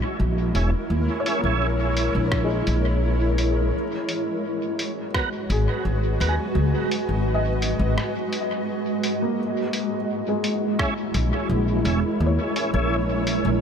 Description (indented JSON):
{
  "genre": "ambient dub",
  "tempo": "85 BPM",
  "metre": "4/4",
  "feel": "straight",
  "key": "unclear",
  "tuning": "A4 = 444 Hz",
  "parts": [
    { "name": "granular cloud pad", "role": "sustained chords", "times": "0.0-13.6 s", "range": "G#3 to D#5", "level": "-25 LUFS", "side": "equal", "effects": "built-in reverb" },
    { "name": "felt-muted upright piano", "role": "arpeggios", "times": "0.0-13.6 s", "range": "G#3 to G#5", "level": "-31 LUFS", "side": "left 2 dB", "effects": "low-pass filter, tape echo" },
    { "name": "upright bass", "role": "bass", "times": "0.2-13.6 s", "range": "E1 to D#2", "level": "-22 LUFS", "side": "equal", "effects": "none" },
    { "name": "lo-fi sampler-style drum kit", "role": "drums", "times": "0.5-13.4 s", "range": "hi-hat, rim click", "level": "-32 LUFS", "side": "equal", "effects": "small room ambience, dub echo" },
    { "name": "tonewheel organ", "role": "stabs", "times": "0.6-6.4, 10.8-13.0 s", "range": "B3 to A#4", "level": "-30 LUFS", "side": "right 3 dB", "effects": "chorus vibrato, slow rotary speaker, dub echo" },
    { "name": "electronic kick drum", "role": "drums", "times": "2.3-5.3, 10.8-10.9 s", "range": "none", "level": "-28 LUFS", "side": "equal", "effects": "small room ambience" }
  ],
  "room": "light reverb",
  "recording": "none",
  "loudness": "-21 LUFS",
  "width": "side -7 dB against mid",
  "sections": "0.0-13.6 A section",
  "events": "break 8.0-9.4",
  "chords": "0.0 A#m7b5; 3.7 G#m7; 9.4 A#m7b5",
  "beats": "0.20 | 0.91 1.62 2.32 3.03 | 3.73 4.44 5.15 5.85 | 6.56 7.26 7.97 8.68 | 9.38 10.09 10.79 11.50 | 12.21 12.91"
}